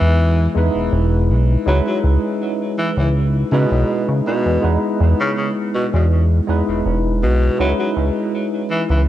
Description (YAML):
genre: vaporwave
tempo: 81 BPM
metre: 4/4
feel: straight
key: E major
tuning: A4 = 440 Hz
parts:
  - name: raspy tenor saxophone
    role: melody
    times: 0.0-9.0 s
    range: B2 to F#3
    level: -22 LUFS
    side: equal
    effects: vintage 12-bit sampler grit, tape echo
  - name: tine electric piano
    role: accompaniment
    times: 0.0-9.1 s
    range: G#3 to B4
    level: -20 LUFS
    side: right 1 dB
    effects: medium stereo tremolo, analog chorus, analog delay
  - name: chorused synth bass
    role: bass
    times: 0.0-9.1 s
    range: E1 to C#3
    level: -16 LUFS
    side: equal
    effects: none
room: moderate plate reverb, RT60 2.5 s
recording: dreamy mix soaked in reverb, cassette tape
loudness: -15 LUFS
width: side -13 dB against mid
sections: 0.0-9.1 A section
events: none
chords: 0.0 Emaj7; 1.7 C#m9; 4.3 Emaj7; 7.6 C#m9